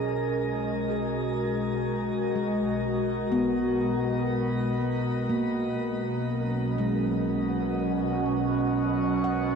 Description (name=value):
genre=ambient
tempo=61 BPM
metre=3/4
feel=straight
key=B major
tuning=A4 = 440 Hz
part: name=warbly tape-like pad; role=sustained chords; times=0.0-9.6 s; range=B2 to D#5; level=-27 LUFS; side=right 1 dB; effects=chorus, built-in reverb
part: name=handpan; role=arpeggios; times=0.0-9.6 s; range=G#3 to F#5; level=-30 LUFS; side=left 1 dB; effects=diffuse ambient delay
part: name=dark symphonic double bass section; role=bass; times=0.0-9.6 s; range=B1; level=-38 LUFS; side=left 1 dB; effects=none
part: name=overtone-sweeping drone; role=drone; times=6.7-9.6 s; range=B2 to F#4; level=-32 LUFS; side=equal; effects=chorus, built-in reverb
room=wet shimmer reverb, RT60 7.8 s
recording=dark, warm production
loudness=-25 LUFS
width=side -6 dB against mid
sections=0.0-9.6 A section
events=fade-in on double bass section 0.0-9.6; filter sweep on ambient pad 0.0-9.6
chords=0.0 Bmaj7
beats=0.88 1.85 | 2.82 3.79 4.78 | 5.77 6.76 7.75 | 8.74